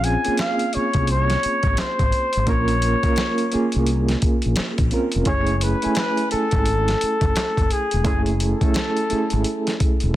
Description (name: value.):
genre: R&B, neo-soul.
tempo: 86 BPM.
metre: 4/4.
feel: swing 62% on 16ths.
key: unclear.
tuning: A4 = 438 Hz.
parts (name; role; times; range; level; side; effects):
warm flugelhorn; melody; 0.0-9.8 s; Ab4 to Ab5; -23 LUFS; left 1 dB; slapback echo.
barky reed electric piano; accompaniment; 0.0-10.2 s; A3 to Ab5; -24 LUFS; right 2 dB; overdrive, tremolo.
mellow fretless electric bass; bass; 0.0-10.1 s; Fb1 to C2; -22 LUFS; equal; lush chorus.
dusty soul sampler-style drum kit; drums; 0.0-10.1 s; handclaps, hi-hat, kick drum, snare drum; -23 LUFS; equal; none.
room: light reverb.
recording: dense, heavily limited modern master.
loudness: -18 LUFS.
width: side -14 dB against mid.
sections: 0.0-10.2 A section.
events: none.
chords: 0.0 Bbm9; 5.3 Gbm9.